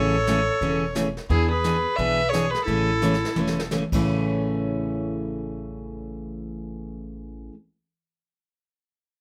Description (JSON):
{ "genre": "country, western swing", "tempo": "175 BPM", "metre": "4/4", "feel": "swing 63% on 8ths", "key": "A major", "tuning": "A4 = 443 Hz", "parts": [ { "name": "dark fiddle", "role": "melody", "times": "0.0-3.6 s", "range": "G#4 to E5", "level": "-28 LUFS", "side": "equal", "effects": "none" }, { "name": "bright clarinet", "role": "second line", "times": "0.0-3.7 s", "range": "E4 to B4", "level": "-30 LUFS", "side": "equal", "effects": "none" }, { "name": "picked steel-string acoustic guitar", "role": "accompaniment", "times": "0.0-7.5 s", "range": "A2 to G#4", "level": "-28 LUFS", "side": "equal", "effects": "none" }, { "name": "upright bass", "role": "bass", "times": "0.0-7.5 s", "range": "E1 to E2", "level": "-32 LUFS", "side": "equal", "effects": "none" }, { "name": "jazz brush drum kit", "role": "drums", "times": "0.3-4.0 s", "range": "brushed snare drum, crash cymbal, hi-hat, kick drum, snare drum, toms", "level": "-34 LUFS", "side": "equal", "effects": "none" } ], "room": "light reverb", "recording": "none", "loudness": "-24 LUFS", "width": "mono", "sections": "0.0-1.3 A section; 1.3-4.0 B section; 4.0-6.8 C section", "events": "drum fill 3.0-3.7", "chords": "0.0 Amaj7; 1.3 E7; 2.7 Amaj7" }